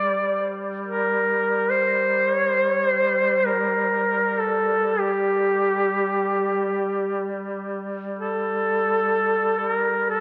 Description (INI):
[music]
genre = caucasian folk, Caucasian lament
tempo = free time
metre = none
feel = none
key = G minor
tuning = A4 = 442 Hz
[part]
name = clear duduk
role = melody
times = 0.0-10.2 s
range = G4 to D5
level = -23 LUFS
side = equal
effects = slapback echo
[part]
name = warm duduk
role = drone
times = 0.0-10.2 s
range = G3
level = -32 LUFS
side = equal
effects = none
[sound]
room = wet cathedral reverb, RT60 4.7 s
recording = none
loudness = -22 LUFS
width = mono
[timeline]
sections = 0.0-10.2 A section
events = none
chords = none